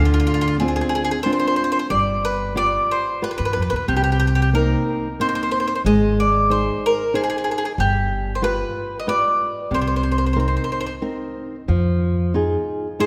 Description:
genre	italian folk, Italian serenade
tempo	92 BPM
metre	3/4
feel	straight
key	C minor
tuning	A4 = 440 Hz
part	bowl-back mandolin	melody	0.0-13.1 s	F4 to Eb5	-24 LUFS	equal	none
part	flamenco guitar	accompaniment	0.0-13.1 s	C3 to D5	-25 LUFS	equal	none
part	upright bass	bass	0.0-12.5 s	G1 to G2	-24 LUFS	equal	none
room	wet concert hall reverb, RT60 2.3 s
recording	recorded in a church or concert hall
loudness	-20 LUFS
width	mono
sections	0.0-11.7 A section; 11.7-13.1 B section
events	none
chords	0.0 Dm7b5; 1.9 G7; 3.9 Cm7; 5.8 Ab; 7.8 G7; 9.7 Cm7; 11.7 Fm7

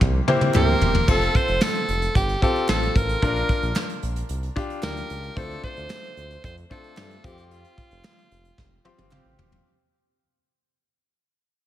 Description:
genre	1980s-style pop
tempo	112 BPM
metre	4/4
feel	straight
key	F major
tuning	A4 = 439 Hz
part	bright concert grand piano	accompaniment	0.0-9.7 s	A3 to C6	-27 LUFS	left 3 dB	none
part	smooth synth bass	bass	0.0-9.6 s	E1 to G2	-26 LUFS	equal	none
part	soft brush drum kit	drums	0.0-9.6 s	crash cymbal, hi-hat, kick drum, snare drum, tambourine, toms	-24 LUFS	equal	gated reverb
part	funky polysynth comp	stabs	0.3-0.9, 8.9-9.5 s	E3 to G4	-28 LUFS	right 5 dB	chorus, digital delay
part	group handclap	percussion	0.5-9.2 s	none	-41 LUFS	right 4 dB	none
part	edgy alto saxophone	melody	0.6-9.1 s	F4 to C5	-26 LUFS	right 1 dB	none
room	light reverb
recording	none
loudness	-20 LUFS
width	side -12 dB against mid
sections	0.0-9.7 A section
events	fade-out 0.0-9.7; band accent 0.0-1.1, 7.5-9.7; drum fill 0.0-1.1, 8.6-9.7; grand piano fill 8.6-9.7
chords	0.0 C7; 1.1 F; 3.2 Bb; 5.4 Dm7; 7.2 Fsus2

